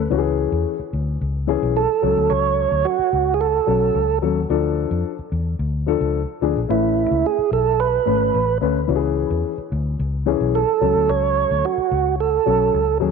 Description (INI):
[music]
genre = uptempo 1960s-style soul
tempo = 109 BPM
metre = 4/4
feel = straight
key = unclear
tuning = A4 = 441 Hz
[part]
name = vintage muted fingered electric bass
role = bass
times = 0.0-13.1 s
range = G#1 to F2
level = -23 LUFS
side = left 2 dB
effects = tube saturation
[part]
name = dark baby grand piano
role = accompaniment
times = 0.1-13.1 s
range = E3 to B4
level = -22 LUFS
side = left 13 dB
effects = none
[part]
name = tonewheel organ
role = melody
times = 1.8-13.0 s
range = E4 to C#5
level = -19 LUFS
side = right 11 dB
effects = overdrive, slow rotary speaker
[sound]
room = moderate plate reverb, RT60 3.1 s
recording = 1960s-style stereo with parts hard left and right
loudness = -17 LUFS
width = side -5 dB against mid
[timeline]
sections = 0.0-13.1 A section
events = none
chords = 0.1 C#m; 2.0 F#m/C#; 4.5 Dm; 6.7 Aadd9; 8.9 C#m; 10.8 F#m/C#